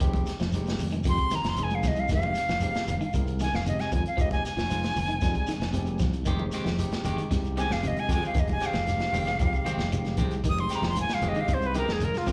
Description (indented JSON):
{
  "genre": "afrobeat",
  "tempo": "115 BPM",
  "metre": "4/4",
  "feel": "straight",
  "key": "F minor",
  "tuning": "A4 = 440 Hz",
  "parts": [
    { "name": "overdriven tine electric piano", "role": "accompaniment", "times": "0.0-12.3 s", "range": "G3 to Bb4", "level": "-40 LUFS", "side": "equal", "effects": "slapback echo" },
    { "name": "clean electric guitar", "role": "arpeggios", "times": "0.0-12.3 s", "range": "C3 to F3", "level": "-38 LUFS", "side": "equal", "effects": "phaser" },
    { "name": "fingered electric bass", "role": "bass", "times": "0.0-12.3 s", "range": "F1 to F2", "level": "-32 LUFS", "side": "equal", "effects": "none" },
    { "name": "crunchy breakbeat drum kit", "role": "drums", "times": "0.0-12.3 s", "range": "hi-hat, kick drum, snare drum", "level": "-34 LUFS", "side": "equal", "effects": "none" },
    { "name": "shekere", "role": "percussion", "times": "0.0-12.3 s", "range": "none", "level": "-39 LUFS", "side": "equal", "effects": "none" },
    { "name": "congas", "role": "percussion", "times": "0.1-12.3 s", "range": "none", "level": "-41 LUFS", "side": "equal", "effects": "none" },
    { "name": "bright silver concert flute", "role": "melody", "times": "1.1-12.3 s", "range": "F4 to Eb6", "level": "-32 LUFS", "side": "equal", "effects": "slapback echo" },
    { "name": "clean electric guitar", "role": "stabs", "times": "6.3-12.3 s", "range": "Eb3 to G4", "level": "-38 LUFS", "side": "equal", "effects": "slapback echo" }
  ],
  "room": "light reverb, studio reverb",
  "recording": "live gig heard through the venue's PA, club reverb",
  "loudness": "-27 LUFS",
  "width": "mono",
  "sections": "0.0-12.3 A section",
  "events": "flute solo 0.0-12.3",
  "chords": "0.0 Fm9"
}